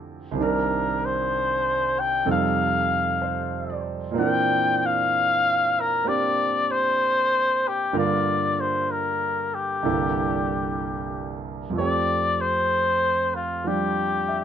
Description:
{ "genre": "jazz", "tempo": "63 BPM", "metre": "4/4", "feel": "swing 67% on 8ths", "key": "F major", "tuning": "A4 = 440 Hz", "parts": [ { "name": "trumpet with cup mute", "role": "melody", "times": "0.0-14.4 s", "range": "F4 to G5", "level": "-22 LUFS", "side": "left 3 dB", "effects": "none" }, { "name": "warm concert grand piano", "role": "accompaniment", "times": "0.0-14.4 s", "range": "C2 to E5", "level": "-26 LUFS", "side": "right 4 dB", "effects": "none" } ], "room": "moderate studio reverb, RT60 0.7 s", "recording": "nothing above 7.7 kHz", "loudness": "-21 LUFS", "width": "side -9 dB against mid", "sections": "0.0-14.4 A section", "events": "none", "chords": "0.4 Cm9; 2.3 F7; 4.2 Bbadd9; 7.9 Gm7; 9.8 C13; 11.8 Fadd9" }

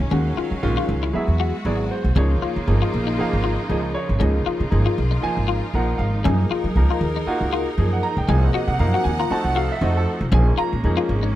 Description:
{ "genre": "jazz", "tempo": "118 BPM", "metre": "4/4", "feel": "swing 55% on 16ths", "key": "unclear", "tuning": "A4 = 439 Hz", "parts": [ { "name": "clear concert grand piano", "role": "accompaniment", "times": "0.0-11.3 s", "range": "Eb3 to Bb5", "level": "-24 LUFS", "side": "right 1 dB", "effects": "none" }, { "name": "bright studio string section", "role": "sustained chords", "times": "0.0-11.4 s", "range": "C3 to Gb5", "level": "-29 LUFS", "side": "right 1 dB", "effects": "none" }, { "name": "upright bass", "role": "bass", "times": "0.0-11.3 s", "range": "Ab1 to Gb3", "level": "-20 LUFS", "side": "equal", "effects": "none" }, { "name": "clean electric guitar", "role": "stabs", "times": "0.1-11.4 s", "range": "Db4 to Gb4", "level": "-26 LUFS", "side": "left 9 dB", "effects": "ensemble chorus" } ], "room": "little or no reverb", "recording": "dry, close 1970s-style studio recording", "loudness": "-18 LUFS", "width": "side -14 dB against mid", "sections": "0.0-11.4 A section", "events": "none", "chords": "0.1 Ebm9; 1.1 Ab7alt; 2.2 Db69; 4.2 Dbadd9; 6.2 Gb69; 8.3 Cm7b5; 9.3 F7b9; 10.3 Bbm7" }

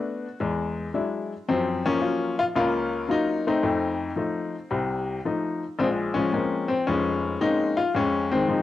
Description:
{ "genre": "solo jazz", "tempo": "112 BPM", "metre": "4/4", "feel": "swing 67% on 8ths", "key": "Bb minor", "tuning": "A4 = 440 Hz", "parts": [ { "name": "clear upright piano", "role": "solo", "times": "0.0-8.6 s", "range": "F1 to F#4", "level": "-23 LUFS", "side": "left 3 dB", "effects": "none" } ], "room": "moderate spring reverb, RT60 1.4 s, small room ambience", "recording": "home recording on cassette", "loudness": "-23 LUFS", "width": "side -13 dB against mid", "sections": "0.0-8.6 A section", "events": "none", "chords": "0.4 E9; 1.5 Gbmaj7; 3.6 F7; 5.8 Bbm9; 7.9 Fm7" }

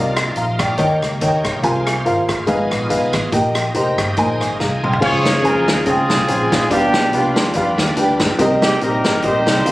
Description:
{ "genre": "uptempo gospel", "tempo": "142 BPM", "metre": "4/4", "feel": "swing 56% on 8ths", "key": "unclear", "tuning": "A4 = 438 Hz", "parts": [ { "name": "warm upright piano", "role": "accompaniment", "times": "0.0-9.7 s", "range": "Ab2 to C6", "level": "-18 LUFS", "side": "equal", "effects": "none" }, { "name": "bright tonewheel organ", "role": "sustained chords", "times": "0.0-9.7 s", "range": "Db3 to C6", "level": "-25 LUFS", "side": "right 1 dB", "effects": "slow rotary speaker, overdrive, chorus vibrato" }, { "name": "vintage muted fingered electric bass", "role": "bass", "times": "0.0-9.7 s", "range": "F1 to F2", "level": "-24 LUFS", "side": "equal", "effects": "none" }, { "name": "swinging big-band drum kit", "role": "drums", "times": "0.2-9.7 s", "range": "crash cymbal, hi-hat, kick drum, rim click, snare drum, toms", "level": "-21 LUFS", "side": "equal", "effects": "none" }, { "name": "warm horn section", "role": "melody", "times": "5.0-9.7 s", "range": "C4 to Db5", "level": "-18 LUFS", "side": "equal", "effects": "none" } ], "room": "moderate large studio reverb, RT60 0.9 s", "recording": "recorded on a phone in the room, club reverb, compression", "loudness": "-14 LUFS", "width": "side -18 dB against mid", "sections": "0.0-5.0 A section; 5.0-9.7 B section", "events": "tonewheel organ fill 4.4-5.0; drum fill 4.6-5.0", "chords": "0.0 Cm11; 0.8 Eb7; 1.6 Ab69/C; 2.5 Abm6; 3.3 Eb/Bb; 4.2 Bb9sus4; 5.0 Dbmaj7; 6.7 G7/B; 8.4 Cm7" }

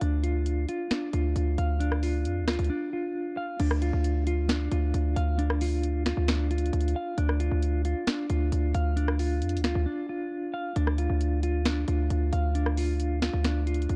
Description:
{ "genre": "hip hop, trap", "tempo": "134 BPM", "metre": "4/4", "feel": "half-time", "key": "D minor", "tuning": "A4 = 440 Hz", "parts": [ { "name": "clean electric guitar", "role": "arpeggios", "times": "0.0-14.0 s", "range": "D4 to F5", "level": "-33 LUFS", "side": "equal", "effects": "tremolo, low-pass filter, tape echo" }, { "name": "hard-hitting 808-style bass", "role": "bass", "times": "0.0-14.0 s", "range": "D2 to F2", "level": "-28 LUFS", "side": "equal", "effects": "none" }, { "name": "trap drum kit", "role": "drums", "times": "0.0-14.0 s", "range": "crash cymbal, finger snaps, hi-hat, rim click, snare drum", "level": "-35 LUFS", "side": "equal", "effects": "vintage 12-bit sampler grit" } ], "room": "little or no reverb", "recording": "dark, warm production", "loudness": "-28 LUFS", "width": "mono", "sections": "0.0-3.6 A section; 3.6-14.0 B section", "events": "break 2.7-3.6, 9.9-10.8", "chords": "0.0 Dm" }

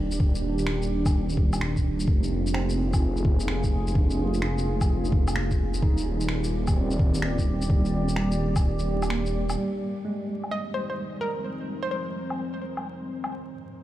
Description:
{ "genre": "future garage", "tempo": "128 BPM", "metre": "4/4", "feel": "swing 66% on 16ths", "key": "F dorian", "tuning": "A4 = 441 Hz", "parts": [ { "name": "deep dark ambient pad", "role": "sustained chords", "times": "0.0-13.8 s", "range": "Eb3 to Ab5", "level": "-32 LUFS", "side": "right 1 dB", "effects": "chorus, built-in reverb, sidechain pumping" }, { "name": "swelling detuned saw bass", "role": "bass", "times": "0.0-9.6 s", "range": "Eb1 to F1", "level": "-26 LUFS", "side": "equal", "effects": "sidechain pumping" }, { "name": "electronic shaker, finger snaps and woodblock", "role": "drums", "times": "0.1-13.3 s", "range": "none", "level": "-35 LUFS", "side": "left 1 dB", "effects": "low-pass filter on snare, low-pass filter on perc" }, { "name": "electronic kick drum", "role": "drums", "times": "0.2-8.6 s", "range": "none", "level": "-23 LUFS", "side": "equal", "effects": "none" }, { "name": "mellow tine electric piano", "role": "accompaniment", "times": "2.5-13.3 s", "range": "G3 to F4", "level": "-33 LUFS", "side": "right 2 dB", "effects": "medium tremolo, sidechain pumping, digital delay" }, { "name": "hollow square pluck", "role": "melody", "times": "10.5-12.0 s", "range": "Bb4 to Eb5", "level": "-32 LUFS", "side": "equal", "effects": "chorus, digital delay" } ], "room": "light reverb", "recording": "played on a big sound system in a bare room, large studio reverb, vinyl crackle", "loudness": "-23 LUFS", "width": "side -14 dB against mid", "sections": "0.0-9.6 A section; 9.6-13.8 B section", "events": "break 8.6-9.6; filter sweep on drum 9.6-13.8; filter sweep on ambient pad 9.6-13.8", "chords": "0.0 Ebmaj7; 2.1 Fm7; 5.8 Ebmaj7; 9.6 Fm7; 13.3 Ebmaj7" }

